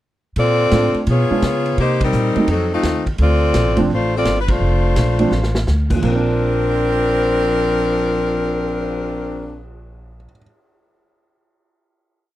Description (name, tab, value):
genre	jazz, big band swing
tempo	170 BPM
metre	4/4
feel	swing 65% on 8ths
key	Bb major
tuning	A4 = 439 Hz
part	warm saxophone section	melody	0.4-9.6 s	F3 to D5	-18 LUFS	left 1 dB	none
part	upright bass	bass	0.4-10.2 s	F1 to Db3	-20 LUFS	equal	none
part	vintage drum kit	drums	0.4-8.8 s	crash cymbal, cymbal swell, hi-hat, kick drum, ride cymbal, snare drum	-27 LUFS	equal	none
part	warm concert grand piano	accompaniment	0.7-10.4 s	Bb2 to F4	-21 LUFS	right 3 dB	none
room	little or no reverb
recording	none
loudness	-15 LUFS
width	side -14 dB against mid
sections	0.4-6.0 A section; 6.0-8.9 final chord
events	band accent 2.0, 4.4; drum fill 5.3-5.7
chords	0.4 Bbmaj9; 1.1 Bdim7; 1.8 Cm7; 2.5 F7b9; 3.2 Bbmaj9; 6.0 Bbadd9